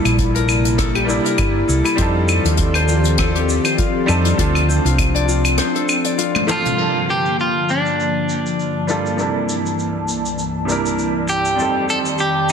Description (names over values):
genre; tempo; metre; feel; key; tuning
sunset chillout; 100 BPM; 4/4; swing 56% on 16ths; G minor; A4 = 440 Hz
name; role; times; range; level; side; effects
airy breathy pad; sustained chords; 0.0-12.5 s; C2 to A5; -22 LUFS; left 1 dB; chorus
concert harp; arpeggios; 0.0-9.2 s; E4 to D5; -24 LUFS; left 6 dB; tape echo
hollow-body short-scale fingered electric bass; bass; 0.0-5.6 s; G1 to F2; -18 LUFS; equal; none
jazz brush drum kit; drums; 0.1-12.5 s; claves, crash cymbal, hi-hat, rim click, shaker, toms; -22 LUFS; left 1 dB; low-pass filter on hats, low-pass filter on toms, low-pass filter on cymbals, low-pass filter on snare, low-pass filter on perc, low-pass filter on room
electronic kick drum; drums; 0.2-5.1 s; none; -21 LUFS; equal; none
clear grand piano; accompaniment; 1.0-12.5 s; F2 to D5; -24 LUFS; right 2 dB; auto-pan, low-pass filter, tape echo
electric guitar at the edge of break-up; melody; 6.5-12.5 s; D4 to A4; -20 LUFS; equal; vintage 12-bit sampler grit, ping-pong delay
room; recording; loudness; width
moderate lush hall reverb, RT60 1.7 s; dense, heavily limited modern master; -15 LUFS; side -7 dB against mid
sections
0.0-6.8 A section; 6.8-12.5 B section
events
drum fill 6.3-6.8; filter sweep on drum 6.8-12.5; filter sweep on grand piano 6.8-12.5; filter sweep on analog synth pad 6.8-12.5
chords
0.0 C13; 2.0 F13; 4.4 Dm7; 6.8 Gm9; 9.2 C13; 11.6 F13